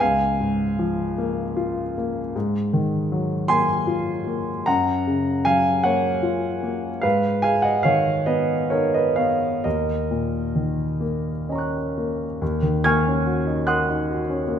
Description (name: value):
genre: classical, impressionist solo piano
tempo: 42-53 BPM (dotted quarters)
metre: 6/8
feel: rubato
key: Eb minor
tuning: A4 = 437 Hz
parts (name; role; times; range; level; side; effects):
- warm concert grand piano; solo; 0.0-14.6 s; Db2 to Ab6; -20 LUFS; equal; none
room: wet recital hall reverb, RT60 1.4 s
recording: minimal, uncompressed stereo recording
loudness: -20 LUFS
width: side -8 dB against mid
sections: 0.0-12.4 A section; 12.4-14.6 A section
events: none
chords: 0.0 Bbm7/Db; 2.3 Ab13; 4.7 Gbmaj7; 7.0 Abm6; 9.6 Ebm7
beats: | 0.01 1.19 | 2.35 3.49 | 4.65 5.84 | 7.04 8.28 | 9.65 11.03 | 12.41 13.66